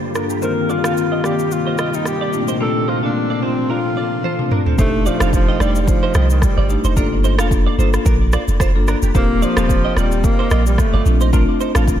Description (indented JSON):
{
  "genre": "afrobeats",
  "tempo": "110 BPM",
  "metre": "4/4",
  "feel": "swing 55% on 16ths",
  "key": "Bb major",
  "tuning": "A4 = 440 Hz",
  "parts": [
    { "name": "granular cloud pad", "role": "sustained chords", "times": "0.0-4.8 s", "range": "C3 to A4", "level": "-25 LUFS", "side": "equal", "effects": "built-in reverb, low-pass filter" },
    { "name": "marimba with medium mallets", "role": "accompaniment", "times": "0.1-11.9 s", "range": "G2 to A4", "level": "-22 LUFS", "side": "left 3 dB", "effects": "low-pass filter" },
    { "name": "afro-pop drum kit", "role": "drums", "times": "0.1-12.0 s", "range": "kick drum, rim click, shaker, toms", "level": "-20 LUFS", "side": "equal", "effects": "none" },
    { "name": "direct-recorded clean electric guitar", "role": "riff", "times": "0.2-11.8 s", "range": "Bb3 to F5", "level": "-26 LUFS", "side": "right 7 dB", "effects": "ensemble chorus, low-pass filter, ping-pong delay" },
    { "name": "breathy alto saxophone", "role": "melody", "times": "0.4-11.2 s", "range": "Eb3 to Bb4", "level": "-22 LUFS", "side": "equal", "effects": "low-pass filter, ping-pong delay" },
    { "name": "punchy sub bass", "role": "bass", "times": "4.8-12.0 s", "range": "Eb1 to C2", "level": "-16 LUFS", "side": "equal", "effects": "none" }
  ],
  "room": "moderate lush hall reverb, RT60 1.9 s",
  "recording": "dreamy mix soaked in reverb",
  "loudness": "-14 LUFS",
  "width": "side -10 dB against mid",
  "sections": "0.0-4.8 A section; 4.8-12.0 B section",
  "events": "filter sweep 0.0-4.8; drum fill 4.2-4.8",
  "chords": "0.4 Eb6; 2.3 Bbmaj9; 4.8 F13; 7.0 Gm7; 9.1 Eb6; 11.1 Bbmaj9"
}